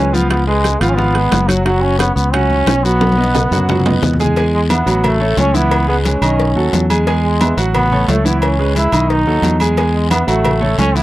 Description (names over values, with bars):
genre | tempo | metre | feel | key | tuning
latin, salsa | 177 BPM | 4/4 | straight | E major | A4 = 440 Hz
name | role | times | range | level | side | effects
bright trombone | melody | 0.0-11.0 s | F#3 to E4 | -17 LUFS | equal | none
clear baby grand piano | accompaniment | 0.0-11.0 s | D#3 to G#5 | -18 LUFS | right 2 dB | none
fingered electric bass | bass | 0.0-11.0 s | F#1 to F#2 | -16 LUFS | equal | none
congas | percussion | 0.1-11.0 s | none | -22 LUFS | left 2 dB | none
guiro | percussion | 0.1-11.0 s | none | -29 LUFS | left 8 dB | none
bongos and cowbell | percussion | 0.3-11.0 s | none | -24 LUFS | left 7 dB | none
timbales and agogo bells | percussion | 0.3-11.0 s | none | -22 LUFS | right 4 dB | none
room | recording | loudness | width
little or no reverb | dry, close 1970s-style studio recording | -12 LUFS | side -16 dB against mid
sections
0.0-4.4 A section; 4.4-11.0 B section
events
drum fill 3.0-4.4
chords
0.3 C#7; 1.7 F#5; 3.0 B; 4.4 E; 5.0 A6; 5.7 C#m7; 6.4 B7; 7.1 E; 7.7 A6; 8.4 C#m7; 9.1 B7; 9.8 E; 10.5 A6